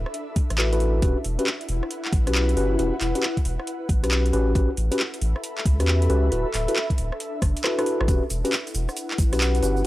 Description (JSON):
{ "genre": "UK garage, two-step garage", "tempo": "136 BPM", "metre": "4/4", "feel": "swing 65% on 16ths", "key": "E dorian", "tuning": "A4 = 440 Hz", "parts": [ { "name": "saturated sub bass", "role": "bass", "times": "0.0-9.9 s", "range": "D1 to E2", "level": "-23 LUFS", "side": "equal", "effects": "sidechain pumping" }, { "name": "ethereal airy pad", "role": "texture", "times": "0.0-9.9 s", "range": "D4 to B5", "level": "-31 LUFS", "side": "left 1 dB", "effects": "ensemble chorus, built-in reverb, sidechain pumping" }, { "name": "garage drum kit", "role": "drums", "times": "0.1-9.9 s", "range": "handclaps, hi-hat, rim click", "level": "-28 LUFS", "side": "equal", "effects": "overdrive" }, { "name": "electronic kick drum", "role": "drums", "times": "0.4-9.3 s", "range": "none", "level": "-22 LUFS", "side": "equal", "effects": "overdrive" }, { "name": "mellow tine electric piano", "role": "stabs", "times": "0.6-9.9 s", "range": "C#4 to B4", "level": "-26 LUFS", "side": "left 1 dB", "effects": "tape echo" }, { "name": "tube shaker", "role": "percussion", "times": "8.1-9.9 s", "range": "none", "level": "-37 LUFS", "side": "right 2 dB", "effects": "none" } ], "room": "light reverb", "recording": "dry, gritty hardware recording", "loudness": "-21 LUFS", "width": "side -16 dB against mid", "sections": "0.0-9.9 A section", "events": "drum fill 7.4-8.1; kick drops out 7.6-8.1", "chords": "0.0 D69; 1.0 Em69; 4.3 A13; 6.3 D69; 8.1 Em69" }